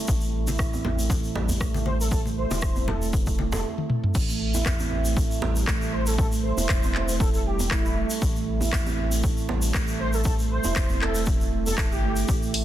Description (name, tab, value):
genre	afro house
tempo	118 BPM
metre	4/4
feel	swing 55% on 16ths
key	A minor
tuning	A4 = 440 Hz
part	warm sub bass	bass	0.1-12.6 s	E1 to A1	-28 LUFS	left 1 dB	sidechain pumping
part	electronic kick drum	drums	0.1-12.4 s	none	-26 LUFS	left 1 dB	none
part	tube shaker	percussion	0.1-12.5 s	none	-35 LUFS	left 1 dB	none
part	handpan	arpeggios	0.2-12.5 s	G3 to E4	-30 LUFS	right 7 dB	sidechain pumping, dub echo
part	congas	percussion	0.5-3.6 s	none	-34 LUFS	left 4 dB	none
part	djembe	percussion	0.5-11.8 s	none	-33 LUFS	right 3 dB	none
part	house drum kit	drums	0.6-12.6 s	crash cymbal, handclaps, hi-hat, rim click, toms	-31 LUFS	left 1 dB	none
part	expressive portamento lead	melody	1.9-12.3 s	E4 to C5	-33 LUFS	equal	ensemble chorus, cassette tape, dub echo
room	small room ambience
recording	dense, heavily limited modern master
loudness	-22 LUFS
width	side -12 dB against mid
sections	0.0-4.2 A section; 4.2-12.6 B section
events	filter sweep on handpan 0.0-4.2; drum fill 3.8-4.2; drop 4.2-12.6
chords	0.0 A5